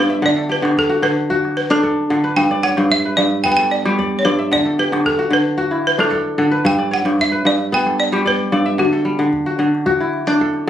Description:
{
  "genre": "west african traditional, West African string and xylophone music",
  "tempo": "112 BPM",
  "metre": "4/4",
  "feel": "straight",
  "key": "G lydian",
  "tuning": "A4 = 444 Hz",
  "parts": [
    { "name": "balafon", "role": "melody", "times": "0.0-10.6 s", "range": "F#4 to G5", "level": "-18 LUFS", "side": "equal", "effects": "slapback echo" },
    { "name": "kora", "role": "arpeggios", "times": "0.0-10.7 s", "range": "G2 to E5", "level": "-16 LUFS", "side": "equal", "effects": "none" },
    { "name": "calabash", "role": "percussion", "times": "0.2-10.6 s", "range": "none", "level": "-31 LUFS", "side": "right 1 dB", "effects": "none" }
  ],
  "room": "light reverb",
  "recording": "recorded on a phone in the room, studio ambience, compression",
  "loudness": "-14 LUFS",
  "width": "side -10 dB against mid",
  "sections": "0.0-10.7 A section",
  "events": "none",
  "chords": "0.2 D; 2.4 G; 4.5 D; 6.7 G; 8.8 D"
}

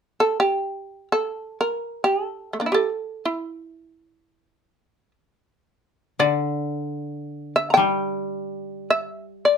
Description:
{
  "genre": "japanese traditional, Japanese chamber music",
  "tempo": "free time",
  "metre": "none",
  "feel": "none",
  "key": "unclear",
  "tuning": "A4 = 440 Hz",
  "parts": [
    { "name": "shamisen", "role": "melody", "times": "0.2-9.6 s", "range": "A3 to Bb5", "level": "-21 LUFS", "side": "equal", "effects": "none" },
    { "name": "koto", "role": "accompaniment", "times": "6.2-9.6 s", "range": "D3 to G3", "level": "-26 LUFS", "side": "left 1 dB", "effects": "none" }
  ],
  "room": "light reverb",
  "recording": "minimal, uncompressed stereo recording",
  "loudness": "-22 LUFS",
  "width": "side -7 dB against mid",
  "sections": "0.0-9.6 A section",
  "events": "none",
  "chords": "none"
}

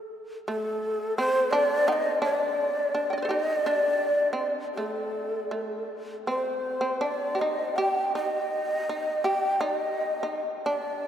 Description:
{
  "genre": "japanese traditional, Japanese chamber music",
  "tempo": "82 BPM",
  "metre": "4/4",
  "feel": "uneven beats, rubato",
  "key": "D in sen",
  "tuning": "A4 = 435 Hz",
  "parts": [
    { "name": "breathy mellow shakuhachi", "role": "melody", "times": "0.5-11.1 s", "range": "A4 to G5", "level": "-26 LUFS", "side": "equal", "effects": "none" },
    { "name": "shamisen", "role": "second line", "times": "0.5-11.1 s", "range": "A3 to G5", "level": "-30 LUFS", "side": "right 1 dB", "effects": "none" }
  ],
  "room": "wet cathedral reverb, RT60 5.8 s",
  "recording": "in a vast, echoing space",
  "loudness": "-24 LUFS",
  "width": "side -9 dB against mid",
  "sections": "0.0-11.1 A section",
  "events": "none",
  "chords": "none"
}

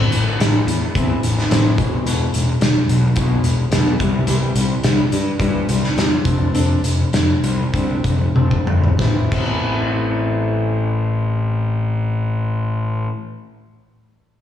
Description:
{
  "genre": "quiet-loud alternative rock",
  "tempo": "92-108 BPM",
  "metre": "4/4",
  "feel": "straight",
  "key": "A minor",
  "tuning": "A4 = 440 Hz",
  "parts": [
    { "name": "fingerpicked steel-string acoustic guitar", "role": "arpeggios", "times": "0.0-13.1 s", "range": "E2 to E4", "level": "-24 LUFS", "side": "left 2 dB", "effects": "slapback echo" },
    { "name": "fuzz picked electric bass", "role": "bass", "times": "0.0-13.1 s", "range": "E1 to G2", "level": "-18 LUFS", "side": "left 1 dB", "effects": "overdrive" },
    { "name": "loose indie drum kit", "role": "drums", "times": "0.1-9.5 s", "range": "crash cymbal, hi-hat, kick drum, snare drum, toms", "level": "-20 LUFS", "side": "equal", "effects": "none" }
  ],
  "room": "little or no reverb",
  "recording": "live gig heard through the venue's PA, recital hall reverb",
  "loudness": "-16 LUFS",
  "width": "side -10 dB against mid",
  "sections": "0.0-9.0 A section; 9.0-11.6 B section",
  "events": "slowing down 4.3-9.0; drum fill 8.3-9.0",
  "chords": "0.0 Am; 1.8 E5; 4.0 C; 6.2 F5; 9.0 Amadd9"
}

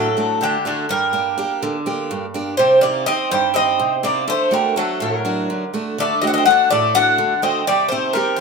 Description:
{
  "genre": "greek folk, Greek bouzouki band",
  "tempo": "248 BPM (eighths)",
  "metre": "7/8",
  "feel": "straight",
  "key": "unclear",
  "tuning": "A4 = 441 Hz",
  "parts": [
    { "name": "Greek bouzouki", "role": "melody", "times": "0.0-8.4 s", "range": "F#4 to F#5", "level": "-17 LUFS", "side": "left 2 dB", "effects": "none" },
    { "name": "Greek bouzouki", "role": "second line", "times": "0.0-8.4 s", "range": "D3 to D4", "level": "-22 LUFS", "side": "right 4 dB", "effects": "none" },
    { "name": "picked steel-string acoustic guitar", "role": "accompaniment", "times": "0.0-8.4 s", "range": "G2 to G4", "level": "-23 LUFS", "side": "right 2 dB", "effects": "none" }
  ],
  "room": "moderate small room reverb, RT60 0.6 s",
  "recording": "minimal, uncompressed stereo recording",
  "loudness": "-16 LUFS",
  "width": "side -4 dB against mid",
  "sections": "0.0-8.4 A section",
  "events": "none",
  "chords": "0.0 D; 0.9 Gm; 2.6 Cm; 4.3 D; 7.7 Cm"
}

